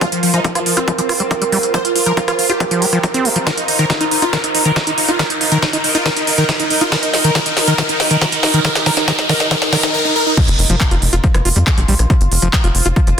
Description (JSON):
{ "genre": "psychedelic trance", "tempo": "139 BPM", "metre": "4/4", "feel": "straight", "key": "unclear", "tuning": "A4 = 440 Hz", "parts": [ { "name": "supersaw stab", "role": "melody", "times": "0.0-10.3 s", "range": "F3 to C5", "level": "-20 LUFS", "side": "right 1 dB", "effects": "phaser, sidechain pumping, dub echo" }, { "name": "overtone-sweeping drone", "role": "sustained chords", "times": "0.0-13.2 s", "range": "F4 to Bb4", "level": "-24 LUFS", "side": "right 4 dB", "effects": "chorus, built-in reverb, sidechain pumping" }, { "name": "overdriven acid bass", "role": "riff", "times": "0.0-13.1 s", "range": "Eb3 to F4", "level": "-20 LUFS", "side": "left 1 dB", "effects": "auto-pan, sidechain pumping, tape echo" }, { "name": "electronic kick drum", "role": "drums", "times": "0.0-13.1 s", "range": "none", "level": "-17 LUFS", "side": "equal", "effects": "high-pass filter on kick, high-pass filter on room" }, { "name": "techno drum kit", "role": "drums", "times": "0.0-13.2 s", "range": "crash cymbal, handclaps, hi-hat, rim click, snare drum", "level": "-18 LUFS", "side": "right 1 dB", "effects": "high-pass filter on snare, high-pass filter on hats, high-pass filter on cymbals, high-pass filter on room" }, { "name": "riser and impact", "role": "sound effects", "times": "0.0-12.1 s", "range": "none", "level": "-22 LUFS", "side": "equal", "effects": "none" }, { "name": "granular cloud pad", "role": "texture", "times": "0.0-13.2 s", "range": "Eb4 to C6", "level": "-24 LUFS", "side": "left 1 dB", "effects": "built-in reverb, sidechain pumping" }, { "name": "tight sequencer bass", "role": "bass", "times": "10.5-13.1 s", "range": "F1 to F2", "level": "-15 LUFS", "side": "equal", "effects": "tube saturation" } ], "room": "light reverb", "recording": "dense, heavily limited modern master", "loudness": "-12 LUFS", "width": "side -8 dB against mid", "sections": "0.0-10.4 A section; 10.4-13.2 B section", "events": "build-up 0.0-10.4; riser 0.0-10.4; filter sweep on acid bass 0.0-10.4; drum fill 3.5-9.9; drop 10.4-13.2; impact 10.4-12.1", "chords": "0.0 F5; 3.5 Eb5; 10.4 F5" }